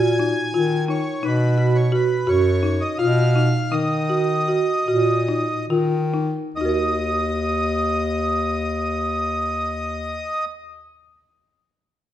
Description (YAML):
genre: contemporary instrumental, chamber music in an uneven meter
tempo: 134-174 BPM (eighths)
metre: 7/8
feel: straight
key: Eb minor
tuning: A4 = 440 Hz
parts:
  - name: accordion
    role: melody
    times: 0.0-10.5 s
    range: B4 to Ab5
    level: -25 LUFS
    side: equal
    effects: none
  - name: folk marimba with medium mallets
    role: arpeggios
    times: 0.0-10.7 s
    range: Eb4 to Eb5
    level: -22 LUFS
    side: right 1 dB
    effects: none
  - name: mellow bass clarinet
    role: bass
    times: 0.0-10.4 s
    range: Eb2 to Eb3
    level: -22 LUFS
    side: left 1 dB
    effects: none
room: wet recital hall reverb, RT60 1.4 s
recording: recorded in a church or concert hall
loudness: -19 LUFS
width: side -11 dB against mid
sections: 0.0-6.6 A section; 6.6-9.7 B section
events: slowing down 1.2-6.6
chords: 0.0 Ebsus2; 1.2 B; 3.7 Ebm